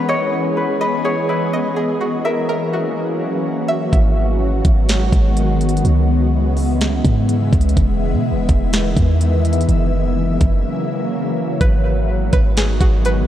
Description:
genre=hip hop, atmospheric cloud-rap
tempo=125 BPM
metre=4/4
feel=half-time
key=G# minor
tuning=A4 = 440 Hz
part: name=Celtic harp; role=melody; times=0.0-4.4 s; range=A#4 to C#5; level=-22 LUFS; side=left 2 dB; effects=diffuse ambient delay
part: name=ethereal airy pad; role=sustained chords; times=0.0-13.3 s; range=C#3 to E5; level=-19 LUFS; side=left 1 dB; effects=ensemble chorus, built-in reverb, sidechain pumping
part: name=string-like resonator pluck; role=arpeggios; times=0.0-3.9, 11.6-13.3 s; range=E4 to E5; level=-26 LUFS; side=right 1 dB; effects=chorus, phaser, diffuse ambient delay
part: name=clean 808-style bass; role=bass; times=3.9-13.3 s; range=E1 to B2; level=-16 LUFS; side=equal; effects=none
part: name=trap drum kit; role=drums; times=3.9-13.2 s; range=hi-hat, kick drum, snare drum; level=-18 LUFS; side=equal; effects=overdrive, vintage 12-bit sampler grit
room=moderate cathedral reverb, RT60 5.2 s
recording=dreamy mix soaked in reverb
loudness=-15 LUFS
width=side -12 dB against mid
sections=0.0-3.9 A section; 3.9-13.3 B section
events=break 10.6-11.6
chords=0.1 Emaj7; 2.0 F#7; 3.9 G#m7; 5.8 C#m7; 7.8 Emaj7; 9.7 F#7; 11.6 G#m7

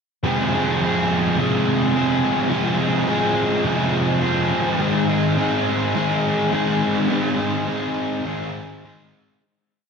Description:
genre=rock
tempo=104 BPM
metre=4/4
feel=straight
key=F minor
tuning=A4 = 440 Hz
part: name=overdriven electric guitar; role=solo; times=0.2-9.4 s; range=F2 to Ab4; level=-18 LUFS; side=equal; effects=lush chorus, ping-pong delay
room=wet lush hall reverb, RT60 1.8 s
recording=dreamy mix soaked in reverb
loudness=-18 LUFS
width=side -6 dB against mid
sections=0.2-9.4 A section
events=fade-out 7.1-9.4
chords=0.2 Fm; 4.8 Ab

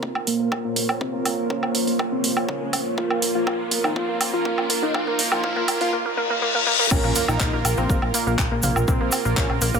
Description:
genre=melodic techno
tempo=122 BPM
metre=4/4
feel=straight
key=Bb minor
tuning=A4 = 440 Hz
part: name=fat analog lead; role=melody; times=0.0-9.5 s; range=Bb3 to F4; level=-28 LUFS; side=left 1 dB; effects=phaser, sidechain pumping, digital delay
part: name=deep dark ambient pad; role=sustained chords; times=0.4-5.9 s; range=Bb3 to Db5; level=-29 LUFS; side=right 1 dB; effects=chorus, built-in reverb, sidechain pumping
part: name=analog pluck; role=arpeggios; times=0.0-9.8 s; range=Bb3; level=-30 LUFS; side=equal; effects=chorus, vintage 12-bit sampler grit, sidechain pumping, ping-pong delay
part: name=brassy analog pad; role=stabs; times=0.0-9.8 s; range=Bb3 to Bb4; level=-27 LUFS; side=right 3 dB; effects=chorus, sidechain pumping, ping-pong delay
part: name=electronic kick drum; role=drums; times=0.0-9.5 s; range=none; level=-25 LUFS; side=left 1 dB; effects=high-pass filter on kick, high-pass filter on room
part: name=house drum kit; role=drums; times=0.0-9.7 s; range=crash cymbal, handclaps, hi-hat, toms, woodblock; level=-25 LUFS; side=right 2 dB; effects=high-pass filter on toms, high-pass filter on perc, high-pass filter on hats, high-pass filter on cymbals, high-pass filter on snare, high-pass filter on room
part: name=riser, reverse cymbal and impact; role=sound effects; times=1.8-8.9 s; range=none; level=-27 LUFS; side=left 4 dB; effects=none
part: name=plucky analog bass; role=bass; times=6.9-9.8 s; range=Ab1 to Bb1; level=-24 LUFS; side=left 1 dB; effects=sidechain pumping
part: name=egg shaker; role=percussion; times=6.9-9.8 s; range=none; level=-30 LUFS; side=left 1 dB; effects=none
room=moderate huge ambient reverb, RT60 6.2 s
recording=high-pass filter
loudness=-19 LUFS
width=side -6 dB against mid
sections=0.0-6.9 A section; 6.9-9.8 B section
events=build-up 0.0-6.9; drum fill 0.0-5.9; filter sweep on synth arpeggio sound 0.0-6.9; filter sweep on analog synth lead 0.0-6.9; filter sweep on analog synth pad 0.0-6.9; filter sweep 0.0-6.9; riser 1.8-5.9; reverse cymbal 5.9-6.9; drop 6.9-9.8; impact 6.9-8.9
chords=0.0 Bbmadd9; 6.9 Bb5

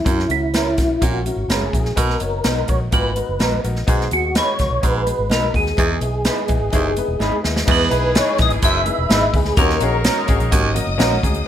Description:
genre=uptempo 1960s-style soul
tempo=126 BPM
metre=4/4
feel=straight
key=unclear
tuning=A4 = 440 Hz
part: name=percussive tonewheel organ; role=melody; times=0.0-10.0 s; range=E4 to E5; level=-21 LUFS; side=equal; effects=chorus vibrato, slow rotary speaker
part: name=warm upright piano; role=accompaniment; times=0.0-11.4 s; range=A#3 to C#5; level=-26 LUFS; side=left 5 dB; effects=none
part: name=edgy baritone saxophone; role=riff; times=0.1-10.7 s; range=D#2 to B2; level=-23 LUFS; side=right 4 dB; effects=none
part: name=vintage muted fingered electric bass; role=bass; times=0.1-11.4 s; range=E1 to F#2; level=-23 LUFS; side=equal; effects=none
part: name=swinging big-band drum kit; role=drums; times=0.1-11.5 s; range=crash cymbal, hi-hat, kick drum, snare drum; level=-20 LUFS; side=equal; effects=none
part: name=congas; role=percussion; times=0.1-11.2 s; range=none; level=-32 LUFS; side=right 2 dB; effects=none
part: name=electric guitar through a small old amp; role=stabs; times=0.5-11.1 s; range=B3 to B4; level=-23 LUFS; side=right 1 dB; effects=lush chorus
part: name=mellow horn section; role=second line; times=7.7-11.2 s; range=D#3 to A#4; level=-29 LUFS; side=left 1 dB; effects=none
part: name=warm studio violin section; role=second line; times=7.7-11.5 s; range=G#4 to D#6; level=-29 LUFS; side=left 2 dB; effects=none
room=moderate small room reverb, RT60 0.5 s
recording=none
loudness=-16 LUFS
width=side -10 dB against mid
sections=0.0-7.7 A section; 7.7-11.5 B section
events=drum fill 7.2-7.7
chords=0.1 F#7; 2.0 Bmaj7; 3.9 G#m7/B; 5.8 Emaj7; 9.6 D#m7

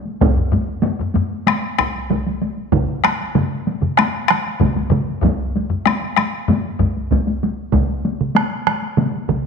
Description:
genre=japanese traditional, taiko drum ensemble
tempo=96 BPM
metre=4/4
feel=straight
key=none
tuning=none
part: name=taiko ensemble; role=percussion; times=0.1-9.4 s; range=none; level=-21 LUFS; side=left 1 dB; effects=none
part: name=taiko ensemble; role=percussion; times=0.2-6.9 s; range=none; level=-20 LUFS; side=left 6 dB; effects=none
part: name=taiko ensemble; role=percussion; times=0.2-9.4 s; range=none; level=-21 LUFS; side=right 2 dB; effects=none
part: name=solo taiko drums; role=percussion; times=2.7-9.4 s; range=none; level=-20 LUFS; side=right 6 dB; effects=none
room=wet echo chamber reverb, RT60 1.6 s, studio reverb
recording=1960s-style stereo with parts hard left and right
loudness=-16 LUFS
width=side -6 dB against mid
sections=0.0-9.5 A section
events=none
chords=none

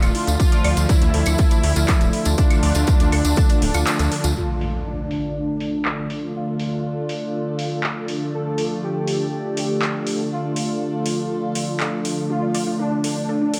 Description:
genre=melodic techno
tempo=121 BPM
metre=4/4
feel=straight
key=D minor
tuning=A4 = 441 Hz
part: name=analog synth brass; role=melody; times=0.0-13.6 s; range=D4 to A4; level=-29 LUFS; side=equal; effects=chorus, sidechain pumping, tape echo
part: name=evolving wavetable pad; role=sustained chords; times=0.0-13.6 s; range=F3 to A5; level=-32 LUFS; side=equal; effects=phaser, built-in reverb, sidechain pumping
part: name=warbly dusty pluck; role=arpeggios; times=0.0-4.3, 12.3-13.6 s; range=A3 to D5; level=-34 LUFS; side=equal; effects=subtle chorus, sidechain pumping, dub echo
part: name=brassy analog pad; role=stabs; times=0.0-13.6 s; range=D3 to F4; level=-29 LUFS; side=equal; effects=chorus, sidechain pumping
part: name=gritty driven synth bass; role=bass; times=0.0-4.3 s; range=D1 to D2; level=-22 LUFS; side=equal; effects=sidechain pumping
part: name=deep house drum kit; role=drums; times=0.0-13.6 s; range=claves, handclaps, hi-hat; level=-30 LUFS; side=equal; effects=overdrive, low-pass filter on hats, studio reverb, low-pass filter on perc, low-pass filter on snare
part: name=tambourine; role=percussion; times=0.0-4.3 s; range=none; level=-33 LUFS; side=equal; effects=none
part: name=electronic kick drum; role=drums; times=0.4-3.5 s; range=none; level=-19 LUFS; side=equal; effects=overdrive, studio reverb
part: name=impact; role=sound effects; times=4.4-6.3 s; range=none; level=-31 LUFS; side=equal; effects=none
part: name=ethereal airy pad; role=texture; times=5.7-13.6 s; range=D4 to A4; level=-34 LUFS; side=equal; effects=ensemble chorus, built-in reverb, sidechain pumping
room=light reverb, digital ambience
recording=none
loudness=-21 LUFS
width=mono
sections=0.0-4.4 A section; 4.4-13.6 B section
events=drop 0.0-4.4; kick drops out 3.9-4.4; band accent 3.9; impact 4.4-6.3; filter sweep on drum 4.4-13.6; filter sweep on analog polysynth 4.4-13.6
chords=0.0 Dm

